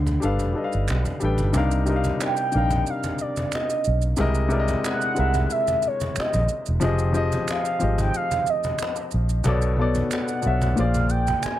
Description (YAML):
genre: R&B, neo-soul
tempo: 91 BPM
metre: 4/4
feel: swing 54% on 16ths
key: unclear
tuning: A4 = 440 Hz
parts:
  - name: warm grand piano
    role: accompaniment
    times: 0.0-11.6 s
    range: Bb2 to G5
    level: -26 LUFS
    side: left 3 dB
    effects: none
  - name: vintage muted fingered electric bass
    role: bass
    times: 0.0-11.5 s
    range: E1 to D2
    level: -22 LUFS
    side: right 1 dB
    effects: none
  - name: cajon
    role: drums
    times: 0.1-11.6 s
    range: none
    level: -31 LUFS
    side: right 1 dB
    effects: none
  - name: maracas and finger snaps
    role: percussion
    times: 0.1-11.6 s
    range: none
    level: -35 LUFS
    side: right 8 dB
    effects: none
  - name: mellow horn-like synth lead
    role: melody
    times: 2.2-11.6 s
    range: Db5 to Ab5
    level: -26 LUFS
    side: right 1 dB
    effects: chorus, phaser, tape echo
room: light reverb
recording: none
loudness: -20 LUFS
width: side -13 dB against mid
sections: 0.0-1.5 A section; 1.5-11.6 B section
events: none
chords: 0.2 G7; 1.5 Cm11; 4.2 C7alt; 6.8 Fm7; 9.5 Bm7; 10.8 Bb9